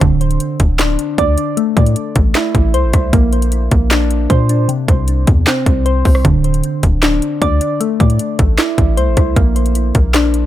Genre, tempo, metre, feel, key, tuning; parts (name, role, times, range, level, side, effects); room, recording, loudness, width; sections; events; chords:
hip hop, trap; 154 BPM; 4/4; half-time; A4 = 440 Hz
soft electric-piano-like synth keys; arpeggios; 0.0-10.5 s; C3 to D5; -16 LUFS; equal; chorus, analog delay
warm 808-style bass; bass; 0.0-10.5 s; D1 to Bb2; -15 LUFS; equal
trap drum kit; drums; 0.0-10.4 s; handclaps, hi-hat, kick drum, rim click, snare drum; -14 LUFS; equal
digital ambience; echo-heavy mix; -11 LUFS; side -13 dB against mid
0.0-10.5 A section
0.0 N.C.; 1.6 Am; 3.1 Bbadd9; 4.7 N.C.; 7.8 Am; 9.4 Bb